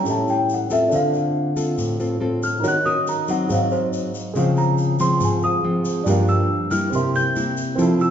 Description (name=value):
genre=bossa nova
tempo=140 BPM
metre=4/4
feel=straight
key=unclear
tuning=A4 = 441 Hz
part: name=worn celesta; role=melody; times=0.0-8.1 s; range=C5 to G6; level=-22 LUFS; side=equal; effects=none
part: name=nylon-string guitar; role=accompaniment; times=0.0-8.1 s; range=G2 to Bb4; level=-20 LUFS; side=left 1 dB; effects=none
part: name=warm concert grand piano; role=accompaniment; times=0.0-8.1 s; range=C4 to Gb5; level=-26 LUFS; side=right 4 dB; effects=none
part: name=tube shaker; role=percussion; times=0.1-8.1 s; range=none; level=-38 LUFS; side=left 5 dB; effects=none
room=wet recital hall reverb, RT60 1.6 s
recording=recorded in a church or concert hall, nothing above 7.8 kHz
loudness=-18 LUFS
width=side -9 dB against mid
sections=0.0-8.1 A section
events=celesta solo 0.0-8.1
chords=0.1 A7; 0.9 Dm7; 2.6 Ebm7; 3.5 Ab7; 4.4 Dbmaj7; 6.1 Gm7; 6.9 C7